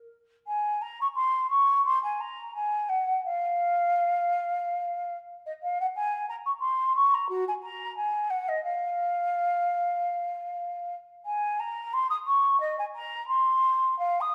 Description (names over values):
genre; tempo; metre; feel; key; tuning
classical, baroque-style fantasia for unaccompanied flute; 89 BPM; 4/4; rubato; Bb minor from 11.3 s; A4 = 441 Hz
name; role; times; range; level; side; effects
mellow hollow silver concert flute; solo; 0.5-14.3 s; Gb4 to Eb6; -28 LUFS; equal; none
room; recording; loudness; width
wet recital hall reverb, RT60 1.4 s; none; -28 LUFS; mono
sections
0.5-14.3 A section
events
none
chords
none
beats
| 0.47 1.17 1.85 2.54 | 3.23 3.91 4.59 5.27 | 5.95 6.61 7.28 7.95 | 8.62 9.29 9.94 10.60 | 11.26 11.93 12.60 13.27 | 13.98